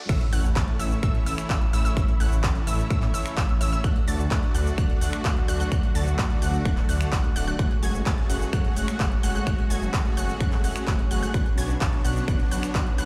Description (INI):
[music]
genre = EDM, festival progressive house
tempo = 128 BPM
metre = 4/4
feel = straight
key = A major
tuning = A4 = 440 Hz
[part]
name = riser, noise sweep and sub drop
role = sound effects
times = 0.0-2.0 s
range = none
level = -38 LUFS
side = equal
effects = none
[part]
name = muted symphonic string section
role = sustained chords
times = 0.1-13.1 s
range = C#3 to F#4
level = -36 LUFS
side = equal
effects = sidechain pumping
[part]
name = unison pluck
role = arpeggios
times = 0.1-13.1 s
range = E6 to A6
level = -38 LUFS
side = equal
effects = cassette tape, sidechain pumping, digital delay
[part]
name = dense compressed supersaw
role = riff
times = 0.1-13.1 s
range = A3 to A5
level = -35 LUFS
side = equal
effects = sidechain pumping, digital delay
[part]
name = detuned saw bass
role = bass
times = 0.1-13.1 s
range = D1 to A2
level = -30 LUFS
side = equal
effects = chorus, sidechain pumping
[part]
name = big-room dance drum kit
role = drums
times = 0.1-13.1 s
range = cabasa, crash cymbal, finger snaps, handclaps, hi-hat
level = -36 LUFS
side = equal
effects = high-pass filter on hats, high-pass filter on perc, high-pass filter on snare, high-pass filter on cymbals, high-pass filter on room
[part]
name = electronic kick drum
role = drums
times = 0.1-12.8 s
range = none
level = -26 LUFS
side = equal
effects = none
[sound]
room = digital ambience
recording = played on a big sound system in a bare room, large studio reverb, high-pass filter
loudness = -24 LUFS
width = mono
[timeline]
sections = 0.1-13.1 A section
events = drop 0.1-13.1; impact 0.1-2.0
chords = 0.1 A; 3.8 D; 7.6 F#madd9; 11.3 Bmadd9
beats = | 0.09 0.56 1.03 1.50 | 1.97 2.44 2.90 3.37 | 3.84 4.31 4.78 5.25 | 5.72 6.19 6.66 7.12 | 7.59 8.06 8.53 9.00 | 9.47 9.94 10.40 10.87 | 11.34 11.81 12.28 12.75